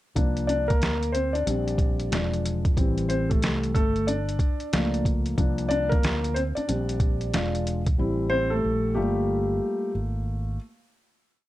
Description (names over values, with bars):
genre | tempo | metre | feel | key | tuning
hip hop, jazz-hop | 92 BPM | 4/4 | swing 64% on 16ths | G dorian | A4 = 442 Hz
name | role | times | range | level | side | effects
dark grand piano | accompaniment | 0.2-10.6 s | E3 to D5 | -26 LUFS | left 1 dB | plate reverb
fretless electric bass | bass | 0.2-10.6 s | E1 to D2 | -29 LUFS | equal | none
boom bap sampler-style drum kit | drums | 0.2-8.0 s | hi-hat, kick drum, snare drum | -25 LUFS | equal | vintage 12-bit sampler grit
room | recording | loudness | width
moderate small room reverb, RT60 0.5 s | dark, warm production | -23 LUFS | side -16 dB against mid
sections
0.2-10.6 A section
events
grand piano solo 0.2-10.6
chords
0.2 C9sus4; 1.5 Bb69; 2.1 E7b9; 2.8 Am7; 3.8 Gm9; 5.4 C9sus4; 6.7 Bb69; 7.3 E7b9; 8.0 Am7; 9.0 Gm9